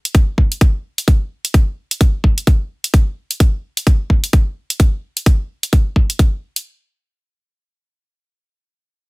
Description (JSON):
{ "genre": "bass house", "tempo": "129 BPM", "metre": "4/4", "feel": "swing 59% on 16ths", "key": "none", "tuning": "none", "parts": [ { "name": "electronic hi-hat", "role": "drums", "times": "0.1-6.6 s", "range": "none", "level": "-20 LUFS", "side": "right 1 dB", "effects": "soft clipping on snare" }, { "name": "electronic kick drum", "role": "drums", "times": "0.1-6.3 s", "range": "none", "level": "-12 LUFS", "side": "equal", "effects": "none" } ], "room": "little or no reverb", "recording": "dense, heavily limited modern master", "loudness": "-14 LUFS", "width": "side -26 dB against mid", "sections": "0.0-6.7 A section", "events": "none", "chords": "none", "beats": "0.15 0.61 | 1.08 1.54 2.01 2.47 | 2.94 3.40 3.87 4.33 | 4.80 5.26 5.73 6.19" }